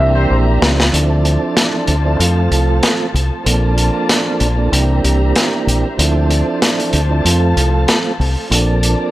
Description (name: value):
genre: hip hop, boom-bap hip-hop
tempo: 95 BPM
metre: 4/4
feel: swing 55% on 16ths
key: D minor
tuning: A4 = 440 Hz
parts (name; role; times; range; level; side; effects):
- mellow tonewheel organ; accompaniment; 0.0-9.1 s; E3 to A4; -18 LUFS; right 4 dB; fast rotary speaker, cassette tape, high-pass filter, low-pass filter, analog delay
- muted studio string section; sustained chords; 0.0-9.1 s; F3 to Bb5; -24 LUFS; left 3 dB; high-pass filter, low-pass filter
- deep dub fingered electric bass; bass; 0.0-8.9 s; Bb1 to F2; -14 LUFS; equal; none
- crunchy breakbeat drum kit; drums; 0.6-9.0 s; hi-hat, snare drum; -16 LUFS; equal; none
room: light reverb, small room reverb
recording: echo-heavy mix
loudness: -12 LUFS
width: side -16 dB against mid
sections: 0.9-9.1 A section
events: drum fill 0.0-0.9; break 0.9-9.1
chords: 0.0 C7; 0.9 Dm7; 2.2 F; 3.5 Bbmaj7; 4.7 C7; 6.0 Dm7; 7.2 F; 8.5 Bbmaj7